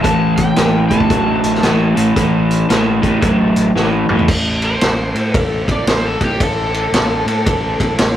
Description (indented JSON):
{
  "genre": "blues rock power trio and southern rock",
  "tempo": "113 BPM",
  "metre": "4/4",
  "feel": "swing 64% on 8ths",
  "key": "A minor",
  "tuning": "A4 = 441 Hz",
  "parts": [
    { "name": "overdriven slide guitar", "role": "melody", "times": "0.0-8.0 s", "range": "G4 to A5", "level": "-22 LUFS", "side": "left 1 dB", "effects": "none" },
    { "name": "crunchy overdriven guitar", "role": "riff", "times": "0.0-4.3 s", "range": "A2 to F#3", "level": "-14 LUFS", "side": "equal", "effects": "none" },
    { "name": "fuzz fingered electric bass", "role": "bass", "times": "0.0-8.2 s", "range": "A1 to A2", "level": "-21 LUFS", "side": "equal", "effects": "overdrive" },
    { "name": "vintage drum kit", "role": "drums", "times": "0.0-8.2 s", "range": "crash cymbal, hi-hat, kick drum, ride cymbal, snare drum, toms", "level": "-17 LUFS", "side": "equal", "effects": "none" }
  ],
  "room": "moderate studio ambience, RT60 0.5 s",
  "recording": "rough rehearsal-room recording",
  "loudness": "-12 LUFS",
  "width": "side -11 dB against mid",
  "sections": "0.0-4.3 A section; 4.3-8.2 B section",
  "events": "drum fill 3.8-4.3; electric slide guitar solo 4.3-8.2",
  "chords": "0.0 A5; 4.3 Am"
}